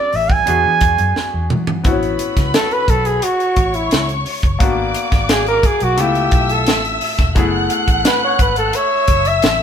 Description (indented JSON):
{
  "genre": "lush 1970s-style soul",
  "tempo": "87 BPM",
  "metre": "4/4",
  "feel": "straight",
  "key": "A major",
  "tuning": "A4 = 440 Hz",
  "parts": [
    { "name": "warm flugelhorn", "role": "melody", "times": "0.0-9.6 s", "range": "E4 to G#5", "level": "-16 LUFS", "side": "right 1 dB", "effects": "none" },
    { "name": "clear grand piano", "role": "accompaniment", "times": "0.0-9.6 s", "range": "A3 to A4", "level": "-23 LUFS", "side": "left 5 dB", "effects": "none" },
    { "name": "vintage muted fingered electric bass", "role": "bass", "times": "0.1-9.6 s", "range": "E1 to E3", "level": "-22 LUFS", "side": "equal", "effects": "none" },
    { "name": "tight funk drum kit", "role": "drums", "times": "0.1-9.6 s", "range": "hi-hat, kick drum, snare drum, toms", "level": "-17 LUFS", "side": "equal", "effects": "none" },
    { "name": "warm studio string section", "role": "second line", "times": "1.8-9.6 s", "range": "B4 to F#6", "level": "-21 LUFS", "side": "equal", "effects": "none" }
  ],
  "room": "moderate stone room reverb, RT60 1.2 s",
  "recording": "band playing live in one room",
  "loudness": "-13 LUFS",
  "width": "side -8 dB against mid",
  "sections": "0.0-1.8 A section; 1.8-9.6 B section",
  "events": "drum fill 1.2-1.8; flugelhorn solo 1.8-9.6",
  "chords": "0.5 E9; 1.8 A69; 4.6 G#m7b5; 6.0 C#7alt; 7.4 F#m11"
}